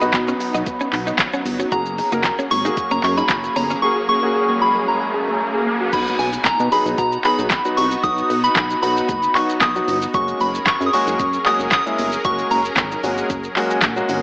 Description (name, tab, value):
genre	dance-pop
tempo	114 BPM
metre	4/4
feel	straight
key	B major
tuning	A4 = 439 Hz
part	soft synth bell	melody	0.0-13.3 s	G#5 to D#6	-20 LUFS	equal	chorus, phaser, digital delay
part	warm grand piano	accompaniment	0.0-14.2 s	F#3 to A#5	-24 LUFS	left 1 dB	sidechain pumping
part	supersaw pad	sustained chords	0.0-14.2 s	F#3 to A#4	-26 LUFS	equal	sidechain pumping
part	thumb-piano-like synth pluck	arpeggios	0.0-5.9 s	A#3 to F#5	-27 LUFS	equal	chorus, sidechain pumping, digital delay
part	direct-recorded clean electric guitar	riff	0.0-3.8 s	C#4 to F#4	-26 LUFS	equal	analog chorus
part	chorused synth bass	bass	0.0-14.2 s	F#1 to B2	-25 LUFS	equal	sidechain pumping
part	smooth R&B drum kit	drums	0.0-14.2 s	crash cymbal, handclaps, hi-hat, kick drum, shaker, snare drum	-22 LUFS	equal	none
part	downlifter, riser and impact	sound effects	0.3-8.0 s	none	-29 LUFS	equal	none
room	moderate lush hall reverb, RT60 1.5 s, digital ambience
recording	AM radio sound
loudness	-16 LUFS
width	side -27 dB against mid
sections	0.0-5.9 A section; 5.9-14.2 B section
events	riser 3.5-5.9; silent gap 3.8-5.9; impact 5.9-8.0; grand piano fill 13.3-14.2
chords	0.0 B; 1.7 F#add9; 5.9 B; 10.1 F#add9